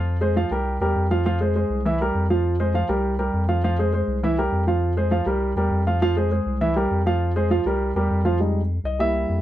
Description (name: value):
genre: latin, salsa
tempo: 202 BPM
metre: 4/4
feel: straight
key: F minor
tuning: A4 = 440 Hz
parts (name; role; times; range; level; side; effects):
- dark baby grand piano; accompaniment; 0.0-9.4 s; E3 to F5; -22 LUFS; right 1 dB; none
- round analog bass; bass; 0.0-9.4 s; C2 to F2; -23 LUFS; left 1 dB; none
room: light reverb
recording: none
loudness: -20 LUFS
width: side -13 dB against mid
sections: 0.0-8.4 A section; 8.4-9.4 B section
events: grand piano solo 8.4-9.4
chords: 0.1 Fm; 0.7 C7; 1.3 Fm; 1.9 C7; 2.4 Fm; 3.0 C5; 3.6 Fm; 4.2 C7; 4.8 Fm; 5.4 C7; 6.0 Fm; 6.6 C7; 7.2 Fm; 7.8 C7; 8.4 Fm7